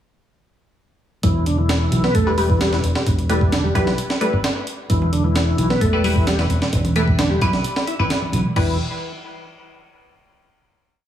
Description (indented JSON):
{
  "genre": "breakbeat, breaks",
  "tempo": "131 BPM",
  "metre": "4/4",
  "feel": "straight",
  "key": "E minor",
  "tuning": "A4 = 439 Hz",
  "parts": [
    { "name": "tonewheel organ", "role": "riff", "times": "1.2-8.8 s", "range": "D3 to E4", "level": "-23 LUFS", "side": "equal", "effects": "chorus vibrato, slow rotary speaker, tube saturation, tape echo" },
    { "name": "fingered electric bass", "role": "bass", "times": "1.2-8.8 s", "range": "E1 to B1", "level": "-20 LUFS", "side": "equal", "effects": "none" },
    { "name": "breakbeat sampler-style drum kit", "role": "drums", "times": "1.2-8.7 s", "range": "crash cymbal, hi-hat, kick drum, snare drum", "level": "-22 LUFS", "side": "equal", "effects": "studio reverb" },
    { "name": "band-passed chord stab", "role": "stabs", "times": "2.3-8.7 s", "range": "G3 to B4", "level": "-24 LUFS", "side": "left 1 dB", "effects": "phaser, wide subtle chorus, tape echo" },
    { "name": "congas", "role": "percussion", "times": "5.0-8.5 s", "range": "none", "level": "-27 LUFS", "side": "equal", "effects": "none" }
  ],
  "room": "light reverb",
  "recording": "heavily compressed radio sound, small room ambience",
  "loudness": "-16 LUFS",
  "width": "side -10 dB against mid",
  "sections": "1.2-8.6 drop; 8.6-10.4 final chord",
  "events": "drop 1.2-8.6",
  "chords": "1.2 Em; 8.6 N.C."
}